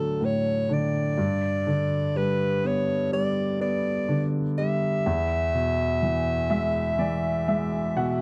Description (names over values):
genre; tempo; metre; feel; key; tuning
pop; 62 BPM; 4/4; straight; unclear; A4 = 440 Hz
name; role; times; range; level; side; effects
mellow alto saxophone; melody; 0.0-8.2 s; A4 to E5; -30 LUFS; equal; none
warm baby grand piano; accompaniment; 0.0-8.2 s; D2 to F#5; -27 LUFS; equal; none
room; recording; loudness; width
wet studio reverb, RT60 0.6 s; cassette tape; -25 LUFS; mono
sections
0.0-8.2 A section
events
grand piano fill 6.0-8.2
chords
0.0 D; 1.2 G; 5.1 E